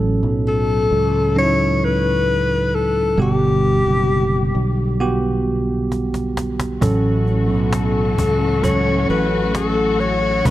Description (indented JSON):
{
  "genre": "pop ballad",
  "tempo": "66 BPM",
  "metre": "4/4",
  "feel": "straight",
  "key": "unclear",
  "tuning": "A4 = 436 Hz",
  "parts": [
    { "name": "bell-like tine electric piano", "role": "accompaniment", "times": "0.0-10.5 s", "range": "A2 to B4", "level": "-19 LUFS", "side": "right 2 dB", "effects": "none" },
    { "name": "sustaining fretless electric bass", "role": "bass", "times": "0.0-10.5 s", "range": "F#1 to C#2", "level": "-22 LUFS", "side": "equal", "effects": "analog chorus" },
    { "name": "breathy alto saxophone", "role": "melody", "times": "0.5-10.5 s", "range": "G4 to C#5", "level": "-19 LUFS", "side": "left 3 dB", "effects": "none" },
    { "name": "cajon", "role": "drums", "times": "5.9-10.5 s", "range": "none", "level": "-22 LUFS", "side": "equal", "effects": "none" },
    { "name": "dark studio string section", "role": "sustained chords", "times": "6.8-10.5 s", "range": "E3 to F#4", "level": "-25 LUFS", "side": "left 4 dB", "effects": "none" }
  ],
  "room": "light reverb, small room ambience",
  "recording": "dark, warm production",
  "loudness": "-16 LUFS",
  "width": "side -14 dB against mid",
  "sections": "0.0-10.5 A section",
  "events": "drum fill 5.9-6.8",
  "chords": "0.0 F#m/A; 3.2 Gmaj7; 6.8 A6",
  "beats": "0.46 1.37 2.28 | 3.19 4.09 5.00 5.91 | 6.82 7.73 8.64 9.55 | 10.46"
}